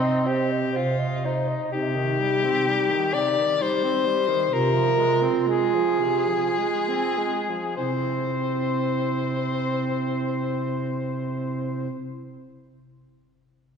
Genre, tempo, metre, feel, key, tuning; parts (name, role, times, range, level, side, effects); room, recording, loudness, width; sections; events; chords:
classical, lyrical piece for single-reed quartet; 47-66 BPM; 3/4; rubato; C minor; A4 = 439 Hz
bright soprano saxophone; melody; 0.0-11.9 s; Eb4 to D5; -25 LUFS; left 4 dB
warm clarinet; second line; 0.0-11.9 s; Eb4 to Eb5; -28 LUFS; right 6 dB
clear tenor saxophone; accompaniment; 0.0-11.9 s; C3 to C4; -29 LUFS; equal
mellow bass clarinet; bass; 0.0-11.9 s; C3; -30 LUFS; right 2 dB
wet concert hall reverb, RT60 2.2 s; heard from further back in the room; -22 LUFS; side -6 dB against mid
0.0-1.7 A section; 1.7-7.8 B section; 7.8-11.2 C section
slowing down 0.3-7.8
0.0 Cm; 4.5 Fm/C; 7.8 C